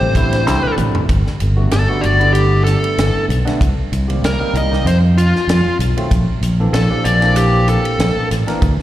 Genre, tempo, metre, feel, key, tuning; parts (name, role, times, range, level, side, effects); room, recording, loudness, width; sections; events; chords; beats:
electric jazz fusion; 96 BPM; 4/4; swing 54% on 16ths; A4 = 442 Hz
dark smooth lead guitar; melody; 0.0-8.3 s; F4 to Eb5; -18 LUFS; left 1 dB; overdrive, slapback echo
barky tine electric piano; accompaniment; 0.0-8.6 s; D3 to Bb4; -21 LUFS; equal; lush chorus, slapback echo
fingered electric bass; bass; 0.0-8.8 s; G1 to F2; -15 LUFS; equal
tight funk drum kit; drums; 0.1-8.8 s; hi-hat, kick drum, ride cymbal, snare drum, toms; -22 LUFS; equal
light reverb, small room ambience; live gig heard through the venue's PA, recital hall reverb; -13 LUFS; side -13 dB against mid
0.0-1.1 A section; 1.1-8.8 B section
drum fill 0.5-1.1
0.0 C69; 1.1 Gmaj9; 3.6 Cm7; 4.9 N.C.; 6.1 Bbmaj9#11
0.47 | 1.09 1.72 2.35 2.98 | 3.60 4.23 4.86 5.49 | 6.11 6.74 7.37 8.00 | 8.62